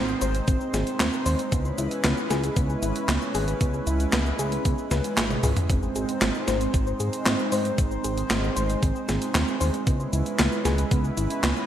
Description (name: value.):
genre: synthwave.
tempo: 115 BPM.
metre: 4/4.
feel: straight.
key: C# minor.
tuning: A4 = 440 Hz.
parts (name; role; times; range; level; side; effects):
chorused pulse-width pad; sustained chords; 0.0-11.7 s; G#3 to B#4; -29 LUFS; right 2 dB; sidechain pumping.
soft round pluck; arpeggios; 0.0-11.7 s; B3 to B#4; -30 LUFS; left 1 dB; chorus, digital delay.
chorused synth bass; bass; 0.0-11.5 s; G#1 to G#2; -27 LUFS; equal; sidechain pumping.
clean 12-bit digital drum machine; drums; 0.1-11.7 s; cabasa, handclaps, hi-hat, snare drum, toms; -27 LUFS; equal; gated reverb.
electronic kick drum; drums; 0.5-11.0 s; none; -24 LUFS; equal; none.
room: moderate lush hall reverb, RT60 1.9 s.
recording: bright 1980s-style digital production, lossy compression artefacts.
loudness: -22 LUFS.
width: side -10 dB against mid.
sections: 0.0-11.7 A section.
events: drum fill 5.3-5.7.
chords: 0.0 G#; 1.5 C#m7; 5.7 G#; 9.9 C#m7.